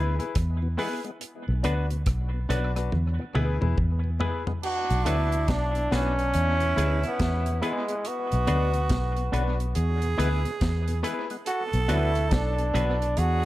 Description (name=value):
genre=roots reggae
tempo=70 BPM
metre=4/4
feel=swing 62% on 16ths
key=B dorian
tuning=A4 = 440 Hz
part: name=electric guitar with an envelope filter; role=accompaniment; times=0.0-13.0 s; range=B3 to B4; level=-35 LUFS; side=right 3 dB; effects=tape echo
part: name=tonewheel organ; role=accompaniment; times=0.0-13.1 s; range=E2 to B3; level=-38 LUFS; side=left 2 dB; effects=none
part: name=clear concert grand piano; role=stabs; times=0.0-13.0 s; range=D4 to B4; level=-34 LUFS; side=left 6 dB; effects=none
part: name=vintage muted fingered electric bass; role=bass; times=0.0-13.4 s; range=B1 to E2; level=-25 LUFS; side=equal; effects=none
part: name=deep reggae drum kit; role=drums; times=0.2-13.4 s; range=crash cymbal, hi-hat, kick drum, rim click, snare drum, toms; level=-31 LUFS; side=equal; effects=analog delay
part: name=bright trombone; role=melody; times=4.6-13.4 s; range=G#3 to F#4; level=-28 LUFS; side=equal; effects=tape echo
part: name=raspy tenor saxophone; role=second line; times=4.6-13.4 s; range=D4 to A4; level=-34 LUFS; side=right 5 dB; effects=tape echo
room=light reverb, small room ambience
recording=echo-heavy mix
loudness=-23 LUFS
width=side -16 dB against mid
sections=0.0-4.6 A section; 4.6-13.4 B section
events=drum fill 2.9-4.6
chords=0.0 E; 1.2 Bm; 2.9 E; 4.6 Bm; 6.3 E; 8.1 Bm; 9.8 E; 11.5 Bm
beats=0.35 | 1.21 2.06 2.92 3.77 | 4.63 5.49 6.34 7.20 | 8.05 8.90 9.76 10.61 | 11.47 12.32 13.18